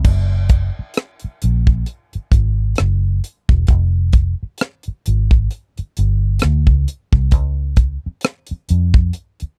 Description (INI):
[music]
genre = R&B, neo-soul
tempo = 66 BPM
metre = 4/4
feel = swing 58% on 16ths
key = unclear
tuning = A4 = 441 Hz
[part]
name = vintage muted fingered electric bass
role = bass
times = 0.0-9.5 s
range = E1 to F2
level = -18 LUFS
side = equal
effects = none
[part]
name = tight funk drum kit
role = drums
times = 0.0-9.6 s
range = crash cymbal, hi-hat, kick drum, rim click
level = -16 LUFS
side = equal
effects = none
[sound]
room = little or no reverb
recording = dry, close 1970s-style studio recording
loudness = -17 LUFS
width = mono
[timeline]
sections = 0.0-9.6 A section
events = none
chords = none